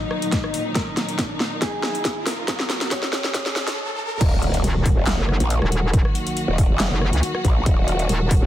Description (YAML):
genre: heavy wobble dubstep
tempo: 139 BPM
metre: 4/4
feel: swing 53% on 16ths, half-time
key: Eb minor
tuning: A4 = 438 Hz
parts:
  - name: mellow electric guitar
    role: melody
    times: 0.0-3.8 s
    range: Eb4 to Db5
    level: -30 LUFS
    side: left 2 dB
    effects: dub echo
  - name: rich studio string section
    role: sustained chords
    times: 0.0-8.5 s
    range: Bb2 to Gb4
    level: -28 LUFS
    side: equal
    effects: sidechain pumping
  - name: riser and impact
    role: sound effects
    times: 0.6-5.9 s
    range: none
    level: -29 LUFS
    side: equal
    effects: none
  - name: dubstep drum kit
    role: drums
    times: 0.1-8.4 s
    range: crash cymbal, handclaps, hi-hat, rim click, snare drum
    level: -25 LUFS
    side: equal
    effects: none
  - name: electronic kick drum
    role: drums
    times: 0.3-8.4 s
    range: none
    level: -20 LUFS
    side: equal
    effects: none
  - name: growl bass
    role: bass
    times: 4.2-8.5 s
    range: Eb1 to Bb1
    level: -22 LUFS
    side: equal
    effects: chorus, overdrive
  - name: metallic wobble bass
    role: bass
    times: 4.6-8.4 s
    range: Eb1 to Db2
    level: -20 LUFS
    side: equal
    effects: chorus, overdrive
room: light reverb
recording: dense, heavily limited modern master, high-pass filter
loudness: -19 LUFS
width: side -13 dB against mid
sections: 0.0-4.2 A section; 4.2-8.5 B section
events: build-up 0.0-4.2; drum fill 0.0-3.8; filter sweep 0.0-4.2; riser 0.6-4.2; stop 3.8-4.2; drop 4.2-8.5; impact 4.2-5.9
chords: 0.0 Ebm